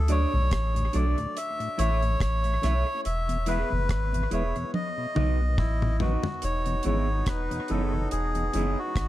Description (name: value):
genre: roots reggae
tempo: 71 BPM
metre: 4/4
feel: swing 57% on 16ths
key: E major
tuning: A4 = 440 Hz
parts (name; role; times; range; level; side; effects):
- melodica; melody; 0.0-9.1 s; E4 to E5; -31 LUFS; left 1 dB; tape echo
- soft dub sub bass; bass; 0.0-9.1 s; E1 to D2; -26 LUFS; equal; none
- mellow electric guitar; accompaniment; 0.1-8.8 s; B3 to E5; -35 LUFS; right 4 dB; tape echo
- mellow tonewheel organ; accompaniment; 0.1-8.7 s; D2 to D4; -35 LUFS; left 2 dB; chorus vibrato, slow rotary speaker, dub echo
- deep reggae drum kit; drums; 0.1-9.1 s; hi-hat, kick drum, rim click, toms; -30 LUFS; equal; dub echo
- clear horn section; second line; 6.4-9.1 s; B2 to D#4; -37 LUFS; right 2 dB; tape echo
room: light reverb, studio reverb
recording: dark, warm production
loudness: -24 LUFS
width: side -15 dB against mid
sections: 0.0-6.4 A section; 6.4-9.1 B section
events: drum fill 4.7-6.4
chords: 0.0 D; 1.4 A; 3.0 E; 4.7 B; 6.4 E6